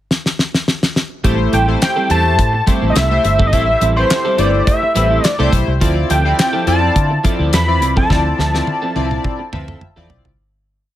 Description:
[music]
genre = early-eighties boogie funk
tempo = 105 BPM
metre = 4/4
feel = straight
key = A minor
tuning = A4 = 440 Hz
[part]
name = damped 70s drum kit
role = drums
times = 0.1-10.4 s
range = handclaps, hi-hat, kick drum, snare drum, toms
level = -17 LUFS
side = equal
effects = none
[part]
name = chorused polysynth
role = accompaniment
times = 1.2-10.3 s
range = A3 to E5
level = -20 LUFS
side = left 2 dB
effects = none
[part]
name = electric guitar at the edge of break-up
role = riff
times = 1.2-10.3 s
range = F3 to B4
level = -23 LUFS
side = right 4 dB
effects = analog chorus
[part]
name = vintage muted fingered electric bass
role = bass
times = 1.2-10.4 s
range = G1 to D3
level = -17 LUFS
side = equal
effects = tube saturation
[part]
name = fat analog lead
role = melody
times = 1.5-10.1 s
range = C5 to B5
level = -17 LUFS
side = equal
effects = slapback echo
[sound]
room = small room ambience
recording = faint mains hum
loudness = -12 LUFS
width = side -13 dB against mid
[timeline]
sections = 0.0-1.2 pickup bar; 1.2-10.4 verse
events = drum fill 0.1-1.2, 8.1-10.4; fade-out 8.1-10.4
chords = 0.0 N.C.; 1.2 Am7; 5.8 Dm9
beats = 0.10 0.67 | 1.24 1.81 2.39 2.96 | 3.53 4.10 4.67 5.24 | 5.82 6.39 6.96 7.53 | 8.10 8.67 9.24 9.81

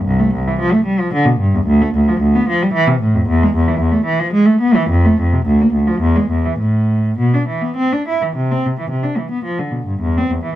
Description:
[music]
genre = classical, baroque-style suite movement for unaccompanied cello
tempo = 99-117 BPM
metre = 3/4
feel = rubato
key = A minor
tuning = A4 = 436 Hz
[part]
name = dark cello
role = solo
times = 0.0-10.6 s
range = C2 to E4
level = -13 LUFS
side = equal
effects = none
[sound]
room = moderate small room reverb, RT60 0.5 s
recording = dark, warm production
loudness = -13 LUFS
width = side -13 dB against mid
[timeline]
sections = 0.0-8.4 A section; 8.4-10.6 A section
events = none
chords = none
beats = | 0.08 0.60 1.12 | 1.68 2.22 2.75 | 3.28 3.80 4.33 | 4.91 5.46 6.01 | 6.60 7.19 7.77 | 8.35 8.90 9.44 | 10.00

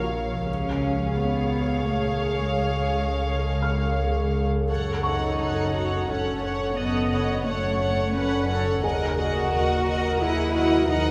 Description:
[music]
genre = cinematic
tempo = 86 BPM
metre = 3/4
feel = straight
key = F# dorian from 4.7 s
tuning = A4 = 440 Hz
[part]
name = warm chamber violin section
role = melody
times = 0.0-11.1 s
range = E#5 to F#5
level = -35 LUFS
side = equal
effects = none
[part]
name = warm studio viola section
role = accompaniment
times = 0.0-11.1 s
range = F#4 to D#5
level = -33 LUFS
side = equal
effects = none
[part]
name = glass harmonica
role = sustained chords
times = 0.0-11.1 s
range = G#4 to F#5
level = -35 LUFS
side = equal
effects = none
[part]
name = warm studio double bass section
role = bass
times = 0.0-11.1 s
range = A#1 to F#2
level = -31 LUFS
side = equal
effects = none
[part]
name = metallic inharmonic drone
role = drone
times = 0.0-11.1 s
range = F#1 to D#2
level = -32 LUFS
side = equal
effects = chorus, built-in reverb, phaser
[part]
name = felt-muted upright piano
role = texture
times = 0.0-11.1 s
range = G#4 to E#6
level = -38 LUFS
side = equal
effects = none
[part]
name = dark studio cello section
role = bass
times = 0.5-11.1 s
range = G#3 to F#4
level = -31 LUFS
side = equal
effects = none
[part]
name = rich studio violin section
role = second line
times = 4.7-11.1 s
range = A4 to D#5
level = -34 LUFS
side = equal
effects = none
[sound]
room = wet recital hall reverb, RT60 1.8 s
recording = recorded in a church or concert hall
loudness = -24 LUFS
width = mono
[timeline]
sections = 0.0-4.7 A section; 4.7-11.1 B section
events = none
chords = 0.5 C#; 4.7 F#m; 8.8 D#m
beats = | 0.48 1.17 1.86 | 2.57 3.28 3.98 | 4.69 5.38 6.08 | 6.77 7.46 8.15 | 8.84 9.52 10.20 | 10.88

